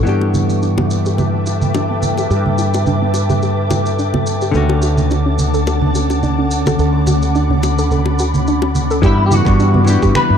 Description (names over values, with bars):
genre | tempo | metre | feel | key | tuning
sunset chillout | 107 BPM | 4/4 | swing 54% on 16ths | unclear | A4 = 441 Hz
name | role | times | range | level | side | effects
hollow-body jazz guitar | accompaniment | 0.0-10.4 s | D3 to G4 | -21 LUFS | moving between left 4 dB and right 2 dB | auto-pan, tape echo
soft round pluck | arpeggios | 0.0-10.3 s | B3 to A4 | -23 LUFS | right 2 dB | chorus, tape echo
mellow fretless electric bass | bass | 0.0-10.4 s | D2 to G2 | -16 LUFS | equal | none
ethereal airy pad | sustained chords | 0.1-10.4 s | G3 to D6 | -21 LUFS | equal | ensemble chorus, built-in reverb
electronic shaker, congas and finger snaps | drums | 0.1-10.3 s | none | -21 LUFS | right 2 dB | none
wind-like tuned noise texture | texture | 0.6-9.0 s | A4 to A5 | -29 LUFS | left 2 dB | built-in reverb
bongos | percussion | 0.2-8.7 s | none | -26 LUFS | left 5 dB | none
electronic kick drum | drums | 9.0-10.1 s | none | -17 LUFS | equal | none
electric guitar at the edge of break-up | melody | 9.1-10.4 s | E4 to B4 | -17 LUFS | left 2 dB | ensemble chorus, tape echo
room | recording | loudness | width
moderate lush hall reverb, RT60 1.8 s, digital ambience | dark, warm production | -13 LUFS | side -8 dB against mid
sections
0.1-9.0 A section; 9.0-10.4 B section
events
filter sweep on synth arpeggio sound 0.1-9.0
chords
0.1 G6; 4.5 Dmaj7; 9.0 G6